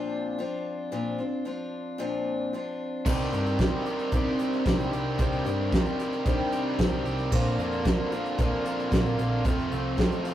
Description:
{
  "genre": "folk rock and heartland rock",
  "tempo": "113 BPM",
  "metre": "4/4",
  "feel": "straight",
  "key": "unclear",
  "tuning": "A4 = 440 Hz",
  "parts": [
    { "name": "picked steel-string acoustic guitar", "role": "accompaniment", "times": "0.0-10.3 s", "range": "F2 to G4", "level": "-30 LUFS", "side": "left 1 dB", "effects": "none" },
    { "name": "raw garage guitar", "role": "riff", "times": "3.1-10.3 s", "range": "F2 to G4", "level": "-31 LUFS", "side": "right 1 dB", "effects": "overdrive" },
    { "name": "hollow-body short-scale picked electric bass", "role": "bass", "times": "3.1-10.0 s", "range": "F1 to G2", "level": "-31 LUFS", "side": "right 1 dB", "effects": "none" },
    { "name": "soft brush drum kit", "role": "drums", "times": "3.1-10.3 s", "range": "crash cymbal, hi-hat, kick drum, snare drum", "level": "-26 LUFS", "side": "right 1 dB", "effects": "none" }
  ],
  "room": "moderate small room reverb, RT60 0.5 s",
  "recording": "rough rehearsal-room recording",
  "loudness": "-25 LUFS",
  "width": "side -12 dB against mid",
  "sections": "0.0-10.3 A section",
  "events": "none",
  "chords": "0.0 Bbadd9; 3.1 Cmadd9; 7.3 Bbadd9; 9.4 F"
}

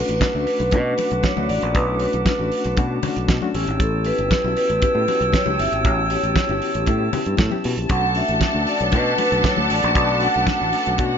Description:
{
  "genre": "disco",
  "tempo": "117 BPM",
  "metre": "4/4",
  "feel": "straight",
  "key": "B minor",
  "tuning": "A4 = 440 Hz",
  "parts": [
    { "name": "vibraphone with soft mallets", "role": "melody", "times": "0.0-11.0 s", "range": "A4 to F#5", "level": "-23 LUFS", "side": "right 1 dB", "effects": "none" },
    { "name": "reed electric piano", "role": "accompaniment", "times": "0.0-11.2 s", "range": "A3 to G4", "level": "-26 LUFS", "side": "left 5 dB", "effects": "fast tremolo" },
    { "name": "small flute group", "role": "sustained chords", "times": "0.0-11.2 s", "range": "B4 to E6", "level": "-26 LUFS", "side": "right 1 dB", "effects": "none" },
    { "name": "fingered electric bass", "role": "bass", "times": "0.1-11.2 s", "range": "G1 to B2", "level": "-24 LUFS", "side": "right 1 dB", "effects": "none" },
    { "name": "damped 70s drum kit", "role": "drums", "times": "0.1-11.1 s", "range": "hi-hat, kick drum, snare drum", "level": "-23 LUFS", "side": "right 1 dB", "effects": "none" },
    { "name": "congas", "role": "percussion", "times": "0.2-11.1 s", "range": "none", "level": "-30 LUFS", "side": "left 6 dB", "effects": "none" },
    { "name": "rich studio string section", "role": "second line", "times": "7.9-11.2 s", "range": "F#4 to A5", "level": "-22 LUFS", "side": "left 2 dB", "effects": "none" }
  ],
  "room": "light reverb",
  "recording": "nothing above 7.5 kHz",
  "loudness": "-17 LUFS",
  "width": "side -7 dB against mid",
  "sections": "0.0-11.2 A section",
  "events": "none",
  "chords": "0.0 Bm7; 3.5 A7; 7.9 Bm7"
}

